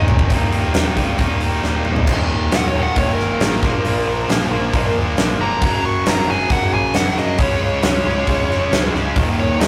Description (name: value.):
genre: classic rock.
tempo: 136 BPM.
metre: 4/4.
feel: straight.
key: unclear.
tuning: A4 = 439 Hz.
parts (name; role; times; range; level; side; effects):
nasal lead guitar with a parked wah; melody; 0.0-9.7 s; Bb4 to Db6; -24 LUFS; equal; overdrive.
picked steel-string acoustic guitar; accompaniment; 0.0-9.7 s; Bb2 to Bb4; -32 LUFS; equal; none.
tonewheel organ; sustained chords; 0.0-0.3, 8.9-9.7 s; none; barely audible; none; none.
tight distorted guitar; riff; 0.0-9.7 s; Eb2 to Eb4; -27 LUFS; equal; distortion.
tight distorted guitar; riff; 0.0-9.7 s; Eb2 to Eb4; -25 LUFS; equal; distortion.
growling picked electric bass; bass; 0.0-9.7 s; Eb1 to Eb2; -27 LUFS; equal; overdrive.
huge arena drum kit; drums; 0.1-9.7 s; crash cymbal, hi-hat, kick drum, snare drum, toms; -21 LUFS; equal; none.
room: moderate studio reverb, RT60 0.6 s.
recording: rough rehearsal-room recording, tube saturation.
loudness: -18 LUFS.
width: mono.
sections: 0.3-2.1 A section; 2.1-9.7 B section.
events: drum fill 0.0-0.3, 1.6-2.1; lead electric guitar solo 2.1-9.7.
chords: 0.3 Eb; 3.6 Bb; 5.6 Gb; 7.4 Db; 9.2 Eb.